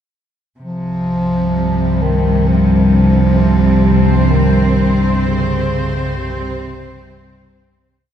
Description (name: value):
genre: dark ambient drone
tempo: 65 BPM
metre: 4/4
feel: straight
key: C phrygian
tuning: A4 = 440 Hz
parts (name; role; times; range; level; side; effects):
- dark bass clarinet; melody; 0.6-7.5 s; C3 to F3; -17 LUFS; equal; tape echo
- rich symphonic cello section; sustained chords; 0.6-8.0 s; C3 to C5; -19 LUFS; equal; none
- analog drone; drone; 1.3-8.1 s; C2 to G2; -14 LUFS; equal; chorus
room: wet huge ambient reverb, RT60 8.1 s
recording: none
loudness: -12 LUFS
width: side -9 dB against mid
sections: 0.6-8.0 A section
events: fade-out 4.3-8.0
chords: 0.6 C5